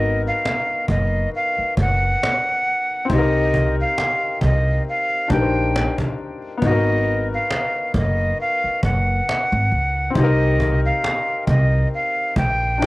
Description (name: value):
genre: lo-fi hip hop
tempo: 68 BPM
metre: 4/4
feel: swing 56% on 16ths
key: unclear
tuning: A4 = 440 Hz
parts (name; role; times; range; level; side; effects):
- breathy bright jazz flute; melody; 0.0-12.9 s; Eb5 to G5; -21 LUFS; equal; low-pass filter, cassette tape
- felt-muted upright piano; accompaniment; 0.0-12.9 s; Cb4 to C5; -25 LUFS; left 4 dB; low-pass filter, cassette tape
- upright bass; bass; 0.0-12.9 s; Gb1 to Db2; -20 LUFS; equal; none
- cajon; drums; 0.0-12.9 s; none; -25 LUFS; right 1 dB; cassette tape
room: little or no reverb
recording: home recording on cassette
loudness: -17 LUFS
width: side -20 dB against mid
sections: 0.0-12.9 A section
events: none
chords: 0.0 Abm7 (rootless); 3.1 Cm7; 6.6 Abm7; 10.2 Cm7